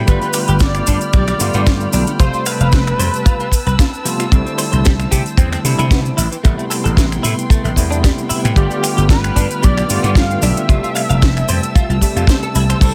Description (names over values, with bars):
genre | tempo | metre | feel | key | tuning
nu-disco, nu disco | 113 BPM | 4/4 | swing 54% on 16ths | unclear | A4 = 440 Hz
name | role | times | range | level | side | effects
overdriven tine electric piano | accompaniment | 0.0-12.9 s | C3 to E5 | -24 LUFS | equal | medium tremolo, sidechain pumping
muted studio string section | sustained chords | 0.0-12.9 s | B3 to F6 | -30 LUFS | equal | sidechain pumping
vintage slap bass | bass | 0.0-12.9 s | F1 to C3 | -19 LUFS | equal | tube saturation
unison lead | melody | 0.1-4.1, 8.6-12.9 s | G4 to F5 | -25 LUFS | equal | tape echo
direct-recorded clean electric guitar | riff | 0.1-12.9 s | D3 to F5 | -27 LUFS | equal | ensemble chorus
house drum kit | drums | 0.1-12.9 s | crash cymbal, finger snaps, hi-hat, snare drum | -25 LUFS | equal | overdrive
kick drum | drums | 0.1-12.9 s | none | -14 LUFS | equal | none
cabasa | percussion | 0.1-12.9 s | none | -29 LUFS | equal | none
room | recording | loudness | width
small room ambience | none | -15 LUFS | mono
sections
0.0-12.9 A section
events
none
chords
0.1 G7; 2.2 Fmaj9#11; 4.3 C6; 6.2 Am9; 8.6 G7; 10.7 Fmaj9#11